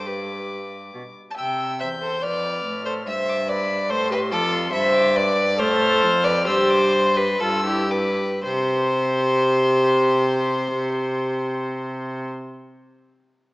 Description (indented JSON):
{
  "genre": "quick classical-period movement for string quartet",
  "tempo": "111-145 BPM",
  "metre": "4/4",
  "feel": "rubato",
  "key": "C major",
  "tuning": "A4 = 440 Hz",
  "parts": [
    { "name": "rich violin", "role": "melody", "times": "0.0-12.3 s", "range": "B5 to G6", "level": "-30 LUFS", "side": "left 2 dB", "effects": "none" },
    { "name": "rich violin", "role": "second line", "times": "0.0-12.3 s", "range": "G4 to A5", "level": "-22 LUFS", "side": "left 1 dB", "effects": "none" },
    { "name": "dark viola", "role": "accompaniment", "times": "0.0-12.3 s", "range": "E4 to E5", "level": "-24 LUFS", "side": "equal", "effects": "none" },
    { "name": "warm cello", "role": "bass", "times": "0.0-12.3 s", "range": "E2 to C3", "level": "-27 LUFS", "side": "right 1 dB", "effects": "none" }
  ],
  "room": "wet concert hall reverb, RT60 1.8 s",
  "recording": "small speaker sound",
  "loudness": "-19 LUFS",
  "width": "side -23 dB against mid",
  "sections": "0.0-8.4 A section; 8.4-12.5 B section",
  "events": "slowing down 3.9-8.4",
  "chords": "0.0 G; 1.4 C; 2.2 F; 3.1 G; 3.9 F/A; 4.7 G; 5.6 F/A; 6.5 Gsus4; 7.4 G; 8.4 C5"
}